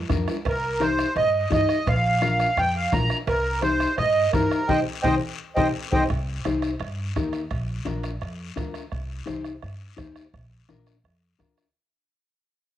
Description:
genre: latin, cumbia.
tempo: 170 BPM.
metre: 4/4.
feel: straight.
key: C minor.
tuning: A4 = 441 Hz.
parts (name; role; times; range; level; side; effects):
upright bass; bass; 0.0-11.7 s; Bb1 to G2; -29 LUFS; equal; none.
mellow electric guitar; accompaniment; 0.1-11.6 s; D4 to Eb5; -27 LUFS; left 4 dB; cassette tape, plate reverb.
bombo; percussion; 0.1-11.8 s; none; -31 LUFS; right 2 dB; none.
congas; percussion; 0.1-11.6 s; none; -34 LUFS; left 6 dB; none.
guiro; percussion; 0.1-11.7 s; none; -41 LUFS; left 8 dB; none.
timbales and cowbell; percussion; 0.3-8.9 s; none; -38 LUFS; right 7 dB; none.
accordion; melody; 0.5-6.0 s; Bb4 to Bb5; -22 LUFS; right 2 dB; light tremolo tuning, cassette tape, plate reverb.
room: wet booth ambience, RT60 0.2 s.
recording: home recording on cassette.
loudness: -21 LUFS.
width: side -12 dB against mid.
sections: 0.0-6.1 A section; 6.1-11.8 B section.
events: drum fill 0.0-0.5; band accent 4.7-6.1; fade-out 6.1-11.8.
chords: 0.5 Cm; 1.9 Bb; 3.3 Cm; 7.5 Bb; 8.9 Cm; 10.3 Bb.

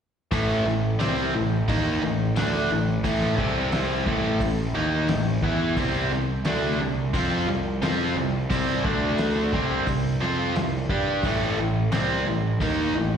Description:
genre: classic rock.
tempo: 88 BPM.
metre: 4/4.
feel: straight.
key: A minor.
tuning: A4 = 440 Hz.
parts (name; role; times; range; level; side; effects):
biting overdriven guitar; riff; 0.3-13.2 s; A2 to G4; -27 LUFS; left 8 dB; slapback echo.
cranked stack guitar; riff; 0.3-13.2 s; A2 to G4; -26 LUFS; right 7 dB; overdrive, spring reverb, slapback echo.
fuzz picked electric bass; bass; 0.3-13.2 s; A1 to G2; -27 LUFS; equal; overdrive.
cloth-damped thuddy drum kit; drums; 0.3-12.8 s; hi-hat, kick drum, snare drum; -31 LUFS; equal; none.
room: light reverb, studio ambience.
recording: live gig heard through the venue's PA, recital hall reverb.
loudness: -22 LUFS.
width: side -8 dB against mid.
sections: 0.3-13.2 A section.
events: none.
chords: 0.3 Am; 3.4 C5; 4.1 A5; 5.8 C5; 8.8 D5; 9.5 C5; 11.2 Am.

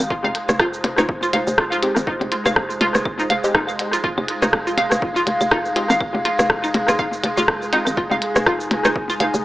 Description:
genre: minimal techno.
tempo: 122 BPM.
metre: 4/4.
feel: swing 57% on 16ths.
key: F minor.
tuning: A4 = 441 Hz.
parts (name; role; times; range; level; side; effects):
hollow knocking FM bass; bass; 0.0-9.4 s; F1 to Ab1; -23 LUFS; equal; sidechain pumping.
minimal click drum kit; drums; 0.0-9.4 s; hi-hat, rim click, shaker; -23 LUFS; equal; small room reverb, analog delay.
electronic claves, percussion blips, rim click and woodblock; percussion; 0.0-9.2 s; none; -23 LUFS; left 1 dB; overdrive, small room reverb, analog delay.
swarming drone; texture; 0.0-9.4 s; Ab3; -30 LUFS; right 1 dB; built-in reverb, sidechain pumping.
warbly tape-like pad; texture; 0.0-9.4 s; Eb4 to Ab5; -25 LUFS; equal; chorus, built-in reverb, sidechain pumping.
hollow square pluck; riff; 0.1-9.2 s; Eb4 to F5; -22 LUFS; equal; lush chorus, sidechain pumping, analog delay.
electronic kick drum; drums; 0.1-9.1 s; none; -29 LUFS; equal; small room reverb.
filtered dub chord stab; stabs; 1.8-7.8 s; Ab3 to G4; -28 LUFS; equal; none.
room: moderate spring reverb, RT60 2.3 s.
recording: echo-heavy mix, AM radio sound.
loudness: -17 LUFS.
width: side -16 dB against mid.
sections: 0.0-9.4 A section.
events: none.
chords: 0.0 Fm7.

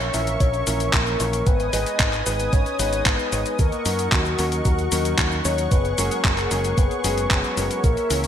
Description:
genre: italo disco.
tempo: 113 BPM.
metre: 4/4.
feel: straight.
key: unclear.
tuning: A4 = 440 Hz.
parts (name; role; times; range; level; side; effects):
soft octave-layered synth lead; melody; 0.0-8.3 s; F#4 to E5; -26 LUFS; left 3 dB; chorus, digital delay.
warm analog pad; sustained chords; 0.0-8.3 s; G#4 to D#6; -28 LUFS; right 1 dB; chorus.
picked electric bass with an envelope filter; bass; 0.0-8.3 s; F#1 to F#2; -26 LUFS; equal; none.
clean 12-bit digital drum machine; drums; 0.0-8.3 s; cabasa, handclaps, hi-hat; -24 LUFS; left 1 dB; gated reverb.
warm concert grand piano; stabs; 0.1-8.3 s; E3 to C#5; -30 LUFS; equal; none.
electronic kick drum; drums; 0.4-7.9 s; none; -21 LUFS; equal; none.
room: light reverb, digital ambience.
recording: bright 1980s-style digital production.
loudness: -19 LUFS.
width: side -9 dB against mid.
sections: 0.0-8.3 A section.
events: none.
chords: 0.0 A#dim; 1.5 G#m; 3.6 D#m7; 5.7 F#sus2.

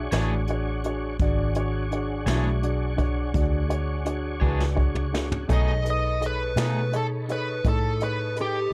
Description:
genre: slow blues.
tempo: 56 BPM (dotted quarters).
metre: 12/8.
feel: straight.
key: E mixolydian.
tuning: A4 = 440 Hz.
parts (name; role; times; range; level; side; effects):
warm grand piano; accompaniment; 0.0-8.7 s; D4 to E5; -33 LUFS; equal; none.
tonewheel organ; sustained chords; 0.0-8.7 s; D4 to C#5; -40 LUFS; equal; slow rotary speaker, chorus vibrato.
vintage muted fingered electric bass; bass; 0.0-8.7 s; G#1 to B2; -29 LUFS; equal; none.
electric guitar at the edge of break-up; accompaniment; 0.1-6.8 s; B2 to C#5; -34 LUFS; equal; harmonic tremolo.
jazz brush drum kit; drums; 0.1-8.5 s; hi-hat, kick drum, snare drum, toms; -29 LUFS; equal; none.
smooth overdriven lead guitar; melody; 5.5-8.7 s; G4 to D#5; -30 LUFS; equal; none.
room: little or no reverb.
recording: dark, warm production.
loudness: -25 LUFS.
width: mono.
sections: 0.0-8.7 A section.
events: drum fill 4.4-5.5.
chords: 0.0 E13; 5.5 B13.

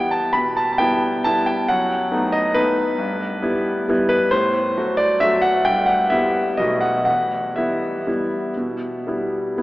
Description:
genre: classical, piano waltz.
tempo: 118-145 BPM.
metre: 3/4.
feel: rubato.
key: E minor.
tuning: A4 = 440 Hz.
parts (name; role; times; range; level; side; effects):
clear grand piano; solo; 0.0-9.6 s; B1 to B5; -17 LUFS; equal; none.
room: wet cathedral reverb, RT60 5.1 s.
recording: in a vast, echoing space, AM radio sound.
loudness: -17 LUFS.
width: side -18 dB against mid.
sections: 0.0-9.6 A section.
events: none.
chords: 0.0 Em; 1.7 B7/F#; 3.0 Em/G; 4.3 F#dim/A; 5.7 Em/G; 6.6 B7; 7.1 Em.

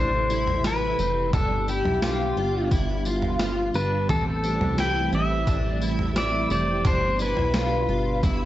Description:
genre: dream pop.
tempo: 87 BPM.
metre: 4/4.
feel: straight.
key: unclear.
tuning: A4 = 438 Hz.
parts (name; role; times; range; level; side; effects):
pedal steel guitar; melody; 0.0-8.2 s; G4 to G5; -26 LUFS; left 1 dB; tape echo.
string machine, full ensemble; sustained chords; 0.0-8.5 s; B2 to G4; -29 LUFS; right 2 dB; ensemble chorus.
picked twelve-string acoustic guitar; arpeggios; 0.0-8.5 s; C4 to F4; -31 LUFS; left 2 dB; ensemble chorus, tape echo.
plucky analog bass; bass; 0.0-8.5 s; F1 to C2; -28 LUFS; equal; none.
gated 80s digital drum machine; drums; 0.3-8.4 s; kick drum, snare drum, tambourine, toms; -27 LUFS; equal; gated reverb, gated reverb snare.
room: light reverb, digital ambience.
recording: vinyl crackle, nothing above 7.9 kHz.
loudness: -21 LUFS.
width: side -14 dB against mid.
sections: 0.0-8.5 A section.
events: none.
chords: 0.0 Am7; 1.3 G; 4.1 Am7; 6.9 G.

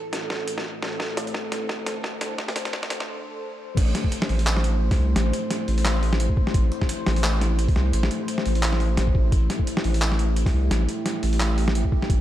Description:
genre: half-time drum and bass.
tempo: 173 BPM.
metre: 4/4.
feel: swing 57% on 16ths, half-time.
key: A minor.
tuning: A4 = 440 Hz.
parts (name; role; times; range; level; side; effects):
deep dark ambient pad; sustained chords; 0.0-12.2 s; A3 to C5; -30 LUFS; left 2 dB; chorus, built-in reverb, vintage 12-bit sampler grit, sidechain pumping.
backwards swelling texture; texture; 0.0-3.1 s; A4; -35 LUFS; right 3 dB; built-in reverb.
saturated sub bass; bass; 0.1-12.2 s; A1 to C2; -23 LUFS; equal; high-pass filter.
boom bap sampler-style drum kit; drums; 0.1-12.2 s; crash cymbal, handclaps, hi-hat, snare drum; -27 LUFS; equal; high-pass filter on hats, high-pass filter on snare, high-pass filter on toms, high-pass filter on cymbals, high-pass filter on room.
electronic kick drum; drums; 0.3-12.2 s; none; -22 LUFS; equal; high-pass filter on kick, high-pass filter on room.
room: light reverb, digital ambience.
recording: dark, warm production, high-pass filter.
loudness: -21 LUFS.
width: side -13 dB against mid.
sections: 0.0-3.8 A section; 3.8-12.2 B section.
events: build-up 0.0-3.8; drum fill 0.0-3.1; filter sweep on ambient pad 0.0-3.8; break 3.1-3.8; drop 3.8-12.2.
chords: 0.0 Am.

